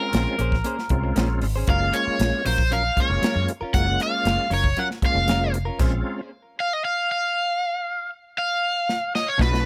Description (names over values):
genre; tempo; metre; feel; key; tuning
straight-eighth soul blues; 117 BPM; 4/4; straight; Bb minor; A4 = 440 Hz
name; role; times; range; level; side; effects
cranked stack guitar; melody; 0.0-9.7 s; Bb4 to Gb5; -26 LUFS; equal; overdrive
bright tonewheel organ; accompaniment; 0.0-9.7 s; Ab3 to A5; -31 LUFS; equal; slow rotary speaker, chorus vibrato
direct-recorded clean electric guitar; stabs; 0.1-6.0, 9.4-9.6 s; B2 to C5; -35 LUFS; equal; digital delay
vintage muted fingered electric bass; bass; 0.1-6.0, 9.4-9.7 s; F1 to Gb2; -27 LUFS; equal; none
tight funk drum kit; drums; 0.1-9.7 s; crash cymbal, hi-hat, kick drum, snare drum; -27 LUFS; equal; none
room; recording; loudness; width
light reverb; none; -23 LUFS; mono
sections
0.0-9.7 A section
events
stop 5.8-9.4; drum fill 8.9-9.7; tonewheel organ fill 8.9-9.7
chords
0.0 Bbm9; 1.7 Gbmaj7; 5.8 Bbm9